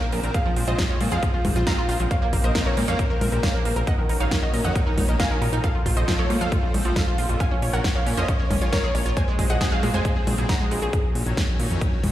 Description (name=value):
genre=uplifting trance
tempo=136 BPM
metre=4/4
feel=straight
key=unclear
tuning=A4 = 440 Hz
part: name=wide unison pluck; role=melody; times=0.0-10.9 s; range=F4 to Bb5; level=-28 LUFS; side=equal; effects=sidechain pumping, tape echo
part: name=lush unison pad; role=sustained chords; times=0.0-12.1 s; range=Db3 to Db4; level=-31 LUFS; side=left 1 dB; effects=chorus, sidechain pumping
part: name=analog pluck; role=arpeggios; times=0.0-10.9 s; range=F2 to Eb5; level=-32 LUFS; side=right 3 dB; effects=chorus, vintage 12-bit sampler grit, sidechain pumping, digital delay
part: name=fat analog bass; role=bass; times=0.1-12.1 s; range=Ab1 to Bb2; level=-25 LUFS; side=equal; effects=sidechain pumping
part: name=big-room dance drum kit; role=drums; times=0.1-12.1 s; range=congas, hi-hat, snare drum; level=-29 LUFS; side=equal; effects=none
part: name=electronic kick drum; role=drums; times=0.3-12.1 s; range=none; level=-24 LUFS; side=equal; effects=none
room=light reverb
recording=played on a big sound system in a bare room, stone room reverb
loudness=-20 LUFS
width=side -13 dB against mid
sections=0.0-12.1 A section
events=none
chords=0.3 Fm/Bb; 2.1 Bbmadd9; 3.9 Ebm7/Bb; 5.6 F/Bb; 7.4 Db6/Bb; 9.2 Ab7/Bb; 10.9 Ebm7/Bb